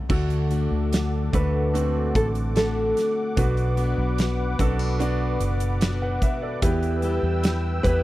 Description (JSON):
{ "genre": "pop ballad", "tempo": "74 BPM", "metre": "4/4", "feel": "straight", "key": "unclear", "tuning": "A4 = 440 Hz", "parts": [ { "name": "clear concert grand piano", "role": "accompaniment", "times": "0.0-8.0 s", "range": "B2 to F#5", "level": "-29 LUFS", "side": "right 4 dB", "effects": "none" }, { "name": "nylon-string guitar", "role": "melody", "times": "0.1-8.0 s", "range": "F#4 to B4", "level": "-28 LUFS", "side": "equal", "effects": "none" }, { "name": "warm analog pad", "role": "sustained chords", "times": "0.4-8.0 s", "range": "A4 to E6", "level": "-33 LUFS", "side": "left 2 dB", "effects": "chorus" }, { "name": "fingerpicked plugged-in steel-string acoustic guitar", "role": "arpeggios", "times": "0.1-8.0 s", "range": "E2 to G4", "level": "-31 LUFS", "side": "left 5 dB", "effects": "none" }, { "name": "vintage muted fingered electric bass", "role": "bass", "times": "0.1-8.0 s", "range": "F#1 to E2", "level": "-24 LUFS", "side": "equal", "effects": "none" }, { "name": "huge arena drum kit", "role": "drums", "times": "0.1-8.0 s", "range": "crash cymbal, hi-hat, kick drum, snare drum", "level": "-26 LUFS", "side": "equal", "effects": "none" } ], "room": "little or no reverb", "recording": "dry, close 1970s-style studio recording", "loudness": "-21 LUFS", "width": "side -16 dB against mid", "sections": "0.1-8.0 A section", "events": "none", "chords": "0.1 D; 3.4 Bm; 6.6 Em", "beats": "| 0.10 0.92 1.74 2.56 | 3.37 4.19 5.00 5.81 | 6.62 7.44" }